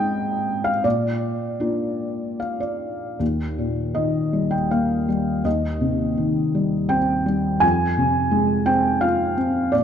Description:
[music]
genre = classical, lyrical solo piano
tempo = 74-88 BPM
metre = 3/4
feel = rubato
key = Eb major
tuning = A4 = 440 Hz
[part]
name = felt-muted upright piano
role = solo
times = 0.0-9.8 s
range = Eb2 to Ab5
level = -19 LUFS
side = equal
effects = none
[sound]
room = moderate scoring stage reverb, RT60 2.1 s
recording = dark, warm production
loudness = -19 LUFS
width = side -8 dB against mid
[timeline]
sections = 0.0-3.2 A section; 3.2-9.8 B section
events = felt piano fill 2.0-3.2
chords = 0.0 Ab; 0.8 Bb; 3.2 Ebadd9; 5.5 Cm/Eb; 7.6 Fm

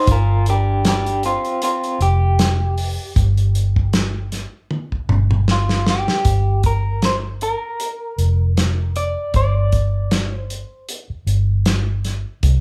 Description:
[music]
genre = straight-eighth soul blues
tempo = 78 BPM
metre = 4/4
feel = swing 56% on 16ths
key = G minor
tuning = A4 = 439 Hz
[part]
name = electric guitar through a small old amp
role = melody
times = 0.0-10.9 s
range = C4 to D5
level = -24 LUFS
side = equal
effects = tremolo
[part]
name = vintage muted fingered electric bass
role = bass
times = 0.1-12.6 s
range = F1 to C2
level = -20 LUFS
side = equal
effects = none
[part]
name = warm soul drum kit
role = drums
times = 0.1-12.6 s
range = hi-hat, kick drum, snare drum, toms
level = -22 LUFS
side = equal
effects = none
[sound]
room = light reverb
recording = band playing live in one room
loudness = -19 LUFS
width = mono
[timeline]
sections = 0.0-6.2 A section; 6.2-12.6 B section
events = clean electric guitar solo 0.0-6.2; drum fill 4.7-6.2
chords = 0.1 G5

